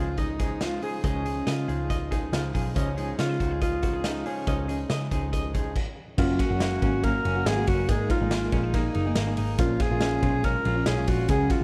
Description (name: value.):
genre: jangly indie pop.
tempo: 140 BPM.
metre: 4/4.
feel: straight.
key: unclear.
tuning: A4 = 440 Hz.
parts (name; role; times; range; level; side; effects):
breathy alto saxophone; melody; 0.0-11.6 s; C#4 to A#4; -32 LUFS; equal; none.
fingerpicked acoustic archtop guitar; accompaniment; 0.0-11.6 s; C#3 to G#4; -36 LUFS; equal; none.
semi-hollow electric guitar; arpeggios; 0.0-11.6 s; F#2 to D#5; -35 LUFS; equal; tremolo.
vintage muted picked electric bass; bass; 0.0-11.6 s; F#1 to C#3; -32 LUFS; equal; none.
raw garage drum kit; drums; 0.2-11.6 s; crash cymbal, hi-hat, kick drum, ride cymbal, snare drum; -31 LUFS; equal; none.
warm analog keys; accompaniment; 6.2-11.6 s; F#3 to C#5; -39 LUFS; equal; none.
room: small room ambience.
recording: none.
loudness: -26 LUFS.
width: mono.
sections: 0.0-6.2 A section; 6.2-11.6 B section.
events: stop 5.8-6.2.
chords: 0.0 C#add9; 6.2 F#; 7.9 G#sus2; 9.6 A#m7.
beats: 0.18 0.61 | 1.04 1.47 1.90 2.33 | 2.76 3.19 3.62 4.04 | 4.47 4.90 5.33 5.76 | 6.18 6.61 7.04 7.46 | 7.89 8.31 8.74 9.16 | 9.59 10.02 10.44 10.86 | 11.29.